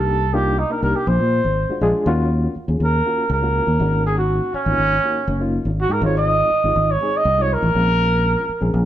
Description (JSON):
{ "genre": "electric jazz fusion", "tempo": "121 BPM", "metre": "4/4", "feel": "straight", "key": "Eb dorian", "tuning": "A4 = 440 Hz", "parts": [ { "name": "dark trumpet", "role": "melody", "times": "0.0-8.9 s", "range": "Db4 to Eb5", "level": "-19 LUFS", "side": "right 2 dB", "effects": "none" }, { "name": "bright reed electric piano", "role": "accompaniment", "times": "0.0-8.9 s", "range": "Ab3 to Bb4", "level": "-25 LUFS", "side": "left 2 dB", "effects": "fast tremolo" }, { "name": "fingered electric bass", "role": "bass", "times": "0.0-8.9 s", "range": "Gb1 to Bb2", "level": "-20 LUFS", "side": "equal", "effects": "none" } ], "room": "moderate stone room reverb, RT60 1.1 s", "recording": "band playing live in one room", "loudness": "-16 LUFS", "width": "side -12 dB against mid", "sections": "0.0-2.1 A section; 2.1-8.9 B section", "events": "trumpet solo 2.1-8.9", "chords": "0.0 Cm9; 1.1 Bb7b13; 2.1 Ebm9; 3.8 Ab9sus4; 6.0 Ab6; 7.8 Bbm9" }